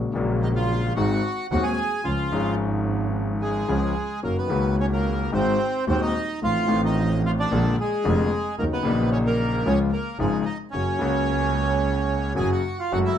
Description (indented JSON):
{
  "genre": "tango",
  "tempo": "110 BPM",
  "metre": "4/4",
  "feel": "rubato",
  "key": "F# major",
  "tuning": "A4 = 440 Hz",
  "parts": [
    { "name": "warm grand piano", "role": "accompaniment", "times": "0.0-13.2 s", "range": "D#1 to G#4", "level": "-25 LUFS", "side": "left 4 dB", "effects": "none" },
    { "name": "clear double bass", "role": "bass", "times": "0.0-13.2 s", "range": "E#1 to D#2", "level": "-26 LUFS", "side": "right 2 dB", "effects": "none" },
    { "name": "bandoneon", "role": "melody", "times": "0.4-13.2 s", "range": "G#3 to G#5", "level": "-26 LUFS", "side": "right 2 dB", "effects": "none" }
  ],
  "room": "light reverb",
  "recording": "close, detailed microphones",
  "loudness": "-21 LUFS",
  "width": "side -9 dB against mid",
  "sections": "0.0-12.9 A section",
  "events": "none",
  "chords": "0.0 F#add9/A#; 1.0 G#7; 2.0 C#; 4.2 F#6; 5.3 G#7; 6.4 F7/A; 7.5 A#7; 8.6 D#m7; 9.7 C#; 10.7 F#",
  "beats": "0.42 0.96 1.51 | 2.05 2.59 3.14 3.69 | 4.24 4.79 5.33 5.88 | 6.42 6.97 7.51 8.05 | 8.59 9.12 9.66 10.20 | 10.74 11.28 11.83 12.38 | 12.93"
}